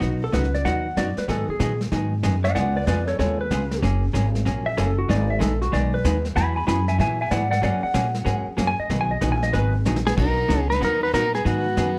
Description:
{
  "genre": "country, western swing",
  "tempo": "189 BPM",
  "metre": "4/4",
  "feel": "swing 64% on 8ths",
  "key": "B major",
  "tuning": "A4 = 441 Hz",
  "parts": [
    { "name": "vintage hollow-body jazz guitar", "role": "accompaniment", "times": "0.0-11.9 s", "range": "B2 to G#4", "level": "-30 LUFS", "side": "equal", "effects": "none" },
    { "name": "upright bass", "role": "bass", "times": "0.0-12.0 s", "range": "F#1 to A#2", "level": "-26 LUFS", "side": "equal", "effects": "none" },
    { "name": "vintage brush drum kit", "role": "drums", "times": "0.0-12.0 s", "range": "brushed snare drum, crash cymbal, hi-hat, kick drum, snare drum", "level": "-32 LUFS", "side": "equal", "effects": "none" },
    { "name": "clean lap steel guitar", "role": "second line", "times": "0.2-9.7 s", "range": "F#4 to B5", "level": "-28 LUFS", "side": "equal", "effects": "none" },
    { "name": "pedal steel guitar", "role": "melody", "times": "10.1-12.0 s", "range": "F#4 to B4", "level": "-25 LUFS", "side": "equal", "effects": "none" },
    { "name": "bright fiddle", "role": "second line", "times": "10.1-12.0 s", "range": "B3 to D#4", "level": "-32 LUFS", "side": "equal", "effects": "none" }
  ],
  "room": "moderate club reverb, RT60 0.8 s",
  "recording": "none",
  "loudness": "-22 LUFS",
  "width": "mono",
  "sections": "0.0-10.2 A section; 10.2-12.0 B section",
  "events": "electric slide guitar solo 0.0-10.2; drum fill 9.9-10.2",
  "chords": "0.0 B; 1.3 G#m7; 2.6 C#7; 3.8 F#add9; 5.1 G#m; 6.4 Eadd9; 7.6 F#add9; 8.9 B6; 10.2 B; 11.4 G#m7",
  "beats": "| 0.01 0.33 0.65 0.97 | 1.28 1.60 1.92 2.24 | 2.55 2.87 3.19 3.50 | 3.82 4.14 4.46 4.77 | 5.09 5.41 5.72 6.04 | 6.36 6.68 6.99 7.31 | 7.63 7.95 8.26 8.58 | 8.90 9.22 9.54 9.85 | 10.17 10.49 10.81 11.12 | 11.44 11.76"
}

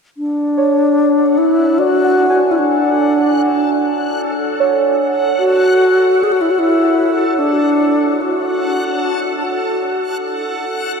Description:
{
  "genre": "ambient",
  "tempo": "74 BPM",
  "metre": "3/4",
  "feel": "straight",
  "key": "D lydian",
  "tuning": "A4 = 440 Hz",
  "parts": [
    { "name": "alto flute", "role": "melody", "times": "0.2-9.4 s", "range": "D4 to G#4", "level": "-14 LUFS", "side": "equal", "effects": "tape echo" },
    { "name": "backwards swelling texture", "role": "texture", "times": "1.2-11.0 s", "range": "A4 to F#5", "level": "-23 LUFS", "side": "equal", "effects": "built-in reverb" },
    { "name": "muted felt-like synth keys", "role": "arpeggios", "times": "0.6-9.9 s", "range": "C#5 to G#5", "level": "-19 LUFS", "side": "right 2 dB", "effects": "chorus, phaser, tape echo" }
  ],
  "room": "wet huge ambient reverb, RT60 7.5 s",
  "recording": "dark, warm production",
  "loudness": "-12 LUFS",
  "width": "side -5 dB against mid",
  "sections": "0.2-11.0 A section",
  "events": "none",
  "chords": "0.2 Dmaj7; 9.8 F#m",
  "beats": "| 0.18 0.99 1.80 | 2.60 3.40 4.20 | 5.00 5.80 6.60 | 7.40 8.21 9.03 | 9.85 10.66"
}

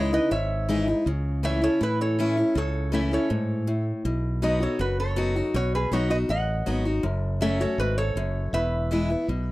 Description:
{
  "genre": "honky-tonk and classic country",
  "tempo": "161 BPM",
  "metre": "4/4",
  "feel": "straight",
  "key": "unclear",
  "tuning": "A4 = 440 Hz",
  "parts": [
    { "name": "lap resonator guitar", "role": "melody", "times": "0.0-9.5 s", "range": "E4 to F#5", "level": "-29 LUFS", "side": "right 1 dB", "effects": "none" },
    { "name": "picked steel-string acoustic guitar", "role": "accompaniment", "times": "0.0-9.5 s", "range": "E2 to F#4", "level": "-26 LUFS", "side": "left 1 dB", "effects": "none" },
    { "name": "modern bright fingered electric bass", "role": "bass", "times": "0.0-9.5 s", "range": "E1 to A2", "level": "-27 LUFS", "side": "equal", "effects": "none" }
  ],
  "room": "small room ambience",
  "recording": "dry, close 1970s-style studio recording",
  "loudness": "-23 LUFS",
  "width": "side -18 dB against mid",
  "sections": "0.0-9.5 A section",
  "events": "none",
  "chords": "0.0 C#madd9; 1.1 A/C#; 4.1 B; 7.0 F#m; 8.5 E",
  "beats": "0.32 0.69 | 1.07 1.44 1.81 2.19 | 2.56 2.94 3.31 3.68 | 4.06 4.43 4.80 5.18 | 5.55 5.92 6.30 6.67 | 7.04 7.42 7.79 8.17 | 8.54 8.91 9.29"
}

